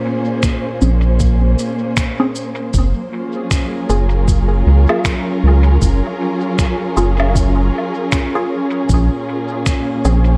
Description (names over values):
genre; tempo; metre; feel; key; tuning
ambient dub; 78 BPM; 4/4; swing 59% on 16ths; unclear; A4 = 441 Hz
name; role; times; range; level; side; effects
dark symphonic string section; sustained chords; 0.0-10.4 s; Bb2 to C5; -22 LUFS; equal; none
electronic finger snaps, cabasa and woodblock; drums; 0.4-10.2 s; none; -27 LUFS; equal; dub echo
electronic kick drum; drums; 0.4-9.8 s; none; -20 LUFS; equal; none
filtered dub chord stab; stabs; 0.8-10.2 s; Bb3 to Ab4; -24 LUFS; equal; phaser, dub echo
round analog bass; bass; 0.8-10.4 s; Gb1 to Db2; -15 LUFS; equal; tube saturation
bubbling stepped-filter texture; texture; 5.7-10.4 s; Db4; -29 LUFS; equal; chorus, built-in reverb
room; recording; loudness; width
little or no reverb; echo-heavy mix; -16 LUFS; mono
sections
0.0-10.4 A section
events
none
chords
0.0 Bbm7; 2.7 Gbmaj7; 8.9 Bbm7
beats
0.43 1.20 1.97 | 2.74 3.51 4.28 5.05 | 5.82 6.59 7.36 8.12 | 8.89 9.66